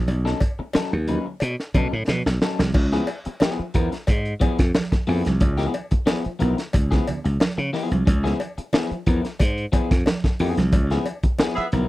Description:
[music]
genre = funk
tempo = 90 BPM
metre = 4/4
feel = straight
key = unclear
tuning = A4 = 440 Hz
[part]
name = slap bass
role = bass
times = 0.0-11.9 s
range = Cb2 to Db3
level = -22 LUFS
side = equal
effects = none
[part]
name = electric guitar at the edge of break-up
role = accompaniment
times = 0.1-11.9 s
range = F3 to Cb5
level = -27 LUFS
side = left 3 dB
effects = none
[part]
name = crunchy breakbeat drum kit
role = drums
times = 0.1-11.9 s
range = crash cymbal, hi-hat, kick drum, snare drum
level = -21 LUFS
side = equal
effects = none
[part]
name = congas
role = percussion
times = 0.1-11.9 s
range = none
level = -29 LUFS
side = right 4 dB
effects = none
[part]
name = cowbell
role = percussion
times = 0.1-11.6 s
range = none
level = -32 LUFS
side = left 2 dB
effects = none
[part]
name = dark horn section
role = second line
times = 11.6-11.7 s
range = Cb4 to E5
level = -23 LUFS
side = right 2 dB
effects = none
[sound]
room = little or no reverb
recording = dry, close 1970s-style studio recording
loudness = -19 LUFS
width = side -17 dB against mid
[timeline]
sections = 0.0-2.7 A section; 2.7-11.9 B section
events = drum fill 2.1-2.7; band accent 10.7-11.9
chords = 0.0 Cb9; 2.7 Db7#9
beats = | 0.08 0.75 1.41 2.08 | 2.75 3.41 4.08 4.75 | 5.41 6.08 6.74 7.41 | 8.07 8.74 9.40 10.06 | 10.73 11.39

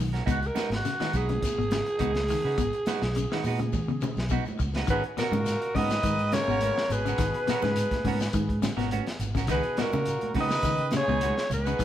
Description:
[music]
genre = afrobeat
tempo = 104 BPM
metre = 4/4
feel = swing 54% on 16ths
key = G# minor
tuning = A4 = 441 Hz
[part]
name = electric guitar at the edge of break-up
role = arpeggios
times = 0.0-11.8 s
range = B2 to D#3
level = -33 LUFS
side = left 6 dB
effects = none
[part]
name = fingered electric bass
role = bass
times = 0.0-11.8 s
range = G#1 to C#3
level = -30 LUFS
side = equal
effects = none
[part]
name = shekere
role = percussion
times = 0.0-11.8 s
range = none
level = -41 LUFS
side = left 4 dB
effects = none
[part]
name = clean electric guitar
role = stabs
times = 0.1-11.8 s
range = G#3 to B4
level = -35 LUFS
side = right 8 dB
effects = none
[part]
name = crunchy breakbeat drum kit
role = drums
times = 0.1-11.8 s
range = hi-hat, kick drum, snare drum, toms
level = -33 LUFS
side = equal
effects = none
[part]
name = growling alto saxophone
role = melody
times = 0.3-11.8 s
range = F#4 to D#5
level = -29 LUFS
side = equal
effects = none
[part]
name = congas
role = percussion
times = 0.6-11.7 s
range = none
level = -37 LUFS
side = right 2 dB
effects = none
[part]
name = bright trombone section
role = second line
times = 4.9-11.8 s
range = A#2 to D#3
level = -39 LUFS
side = left 1 dB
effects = none
[part]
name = brilliant trumpet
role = second line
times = 4.9-11.8 s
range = F#4 to B4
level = -36 LUFS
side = right 4 dB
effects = none
[sound]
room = moderate stone room reverb, RT60 1.1 s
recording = band playing live in one room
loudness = -24 LUFS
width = side -11 dB against mid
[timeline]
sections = 0.0-4.9 A section; 4.9-11.8 B section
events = drum fill 3.7-4.9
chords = 0.3 G#m11; 9.5 C#9sus4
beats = | 0.27 0.85 1.43 2.00 | 2.58 3.16 3.73 4.31 | 4.88 5.46 6.04 6.61 | 7.19 7.76 8.34 8.91 | 9.49 10.06 10.64 11.22 | 11.79

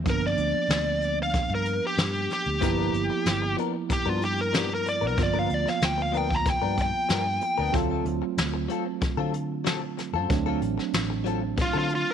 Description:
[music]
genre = straight-eighth soul blues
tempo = 94 BPM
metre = 4/4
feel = straight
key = unclear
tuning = A4 = 440 Hz
[part]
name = bright tine electric piano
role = accompaniment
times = 0.0-12.1 s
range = F3 to F4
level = -31 LUFS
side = right 13 dB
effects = medium stereo tremolo
[part]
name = vintage muted fingered electric bass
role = bass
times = 0.0-12.0 s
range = G1 to D3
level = -30 LUFS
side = left 1 dB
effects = none
[part]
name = smooth overdriven lead guitar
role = melody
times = 0.1-7.7, 11.6-12.1 s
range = F4 to A#5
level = -27 LUFS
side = left 1 dB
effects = none
[part]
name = vintage brush drum kit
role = drums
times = 0.1-12.1 s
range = hi-hat, kick drum, snare drum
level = -28 LUFS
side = left 1 dB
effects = none
[part]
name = direct-recorded clean electric guitar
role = stabs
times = 2.6-11.9 s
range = F3 to A#4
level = -32 LUFS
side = left 14 dB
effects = lush chorus
[sound]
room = light reverb, studio reverb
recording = 1960s-style stereo with parts hard left and right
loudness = -24 LUFS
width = side -8 dB against mid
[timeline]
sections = 0.0-12.1 A section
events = lead electric guitar solo 0.0-12.1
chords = 0.1 G7#9; 7.7 D7#9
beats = | 0.06 0.70 1.34 1.98 | 2.62 3.26 3.90 4.54 | 5.18 5.82 6.46 7.10 | 7.74 8.38 9.02 9.66 | 10.30 10.94 11.58

